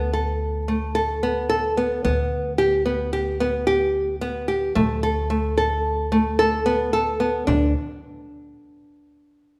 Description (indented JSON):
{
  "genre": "contemporary instrumental, chamber music in an uneven meter",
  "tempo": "110 BPM",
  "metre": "5/4",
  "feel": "straight",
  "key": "unclear",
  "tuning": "A4 = 438 Hz",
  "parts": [
    { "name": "nylon-string guitar", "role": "arpeggios", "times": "0.0-7.7 s", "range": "A3 to A4", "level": "-23 LUFS", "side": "equal", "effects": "none" },
    { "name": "upright bass", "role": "bass", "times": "0.0-7.7 s", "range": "D2", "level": "-30 LUFS", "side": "equal", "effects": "none" },
    { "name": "frame drum", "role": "percussion", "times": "0.7-7.7 s", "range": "none", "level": "-34 LUFS", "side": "equal", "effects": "none" }
  ],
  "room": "moderate recital hall reverb, RT60 1.6 s",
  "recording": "none",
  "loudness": "-22 LUFS",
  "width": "mono",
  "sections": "0.0-7.5 A section; 7.5-9.6 B section",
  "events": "none",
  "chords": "0.0 Asus2/D; 2.0 G/D; 4.8 D5; 7.5 N.C."
}